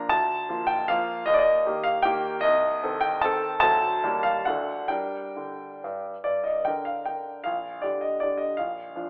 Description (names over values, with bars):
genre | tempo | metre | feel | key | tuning
classical, romantic triple-time dance for piano with dotted rhythms | 122-169 BPM | 3/4 | rubato | G minor | A4 = 439 Hz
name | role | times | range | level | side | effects
warm grand piano | solo | 0.0-9.1 s | Bb1 to Bb5 | -23 LUFS | equal | none
room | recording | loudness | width
moderate recital hall reverb, RT60 1.5 s | telephone sound | -23 LUFS | side -33 dB against mid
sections
0.0-6.2 A section; 6.2-9.1 A section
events
none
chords
0.1 Bb/D; 1.3 Eb; 2.4 Adim/C; 3.6 D7; 4.0 Eb; 4.5 D; 4.9 Gm; 7.4 Gm/Bb; 8.6 Bb